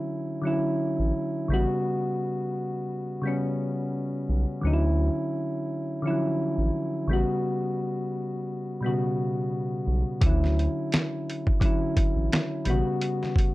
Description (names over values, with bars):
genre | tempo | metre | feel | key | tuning
lo-fi hip hop | 86 BPM | 4/4 | swing 57% on 16ths | D major | A4 = 439 Hz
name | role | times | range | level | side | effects
soft electric-piano-like synth keys | accompaniment | 0.0-13.5 s | B2 to F#4 | -26 LUFS | equal | chorus, plate reverb
saturated sub bass | bass | 1.0-12.8 s | A1 to D2 | -24 LUFS | equal | none
dusty soul sampler-style drum kit | drums | 10.2-13.5 s | hi-hat, kick drum, snare drum | -24 LUFS | equal | overdrive
room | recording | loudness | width
light reverb | dark, warm production | -24 LUFS | side -18 dB against mid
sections
0.0-13.5 A section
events
none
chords
0.0 Dmaj9; 1.5 A13 (rootless); 4.6 Dmaj9; 7.1 A13 (rootless); 10.2 Dmaj9; 12.7 A13